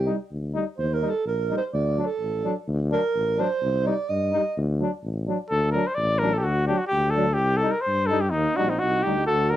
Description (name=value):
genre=balkan folk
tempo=127 BPM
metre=2/4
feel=swing 55% on 16ths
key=D phrygian dominant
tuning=A4 = 439 Hz
part: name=mellow alto saxophone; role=second line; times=0.0-4.6, 8.3-9.6 s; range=Bb3 to Eb5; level=-26 LUFS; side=right 5 dB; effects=cassette tape
part: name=mellow tuba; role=bass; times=0.0-9.6 s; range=A1 to G2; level=-26 LUFS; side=left 1 dB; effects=none
part: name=brilliant trombone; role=accompaniment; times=0.1-9.6 s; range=D4 to Eb4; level=-29 LUFS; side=left 7 dB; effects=cassette tape
part: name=mellow euphonium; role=accompaniment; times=0.1-9.6 s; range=F#3 to G3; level=-31 LUFS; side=right 5 dB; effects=cassette tape
part: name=warm cornet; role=melody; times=5.5-9.6 s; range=Eb4 to D5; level=-23 LUFS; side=left 1 dB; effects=cassette tape
room=moderate studio reverb, RT60 0.5 s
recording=home recording on cassette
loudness=-22 LUFS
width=side -12 dB against mid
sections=0.0-5.5 A section; 5.5-9.6 B section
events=alto saxophone solo 0.0-5.5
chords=0.0 Cm; 0.8 Eb; 1.7 D; 3.6 Cm; 4.6 D; 7.4 Cm; 8.3 Eb